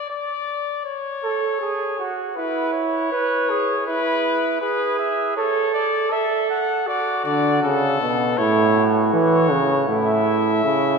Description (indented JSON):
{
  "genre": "classical, imitative canzona for brass ensemble",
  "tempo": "80 BPM",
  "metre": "4/4",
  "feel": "straight",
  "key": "unclear",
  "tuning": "A4 = 438 Hz",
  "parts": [
    { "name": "clear trumpet", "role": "melody", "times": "0.0-11.0 s", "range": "A4 to F#5", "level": "-24 LUFS", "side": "left 6 dB", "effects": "none" },
    { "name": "mellow trumpet", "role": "second line", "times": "1.2-11.0 s", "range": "E4 to B4", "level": "-22 LUFS", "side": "right 5 dB", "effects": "none" },
    { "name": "clear euphonium", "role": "accompaniment", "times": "7.3-11.0 s", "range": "A2 to E3", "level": "-18 LUFS", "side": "right 1 dB", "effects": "none" }
  ],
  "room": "wet church reverb, RT60 3.1 s",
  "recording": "heard from further back in the room",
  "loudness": "-18 LUFS",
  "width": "side -5 dB against mid",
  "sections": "0.0-11.0 A section",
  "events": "none",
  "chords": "0.0 N.C.; 0.9 A; 2.4 E; 5.4 A; 6.9 D; 8.4 A"
}